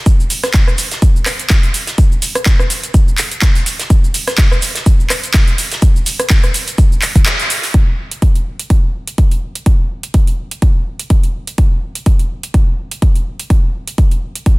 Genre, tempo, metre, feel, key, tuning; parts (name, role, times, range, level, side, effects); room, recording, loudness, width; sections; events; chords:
house; 125 BPM; 4/4; swing 55% on 16ths
electronic kick drum; drums; 0.1-14.6 s; -11 LUFS; equal; studio reverb
garage drum kit; drums; 0.1-14.6 s; handclaps, hi-hat, rim click, shaker; -17 LUFS; right 1 dB; overdrive, studio reverb
warm soul drum kit; drums; 0.1-7.7 s; hi-hat, shaker, snare drum; -28 LUFS; equal
little or no reverb; dense, heavily limited modern master; -11 LUFS; side -23 dB against mid
0.0-7.7 A section; 7.7-14.6 B section
break 7.3-7.7; band accent 7.3